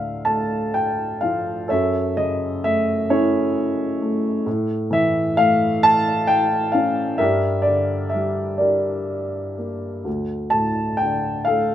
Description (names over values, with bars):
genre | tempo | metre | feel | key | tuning
classical, lyrical solo piano | 43 BPM (dotted quarters) | 6/8 | uneven beats, rubato | unclear | A4 = 439 Hz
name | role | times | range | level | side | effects
warm upright piano | solo | 0.0-11.7 s | D2 to A5 | -18 LUFS | equal | none
room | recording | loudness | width
light reverb | minimal, uncompressed stereo recording | -18 LUFS | side -11 dB against mid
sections
0.0-11.7 A section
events
none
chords
0.0 Dm; 1.7 F#m7; 4.5 A; 7.2 Gm; 10.1 Dm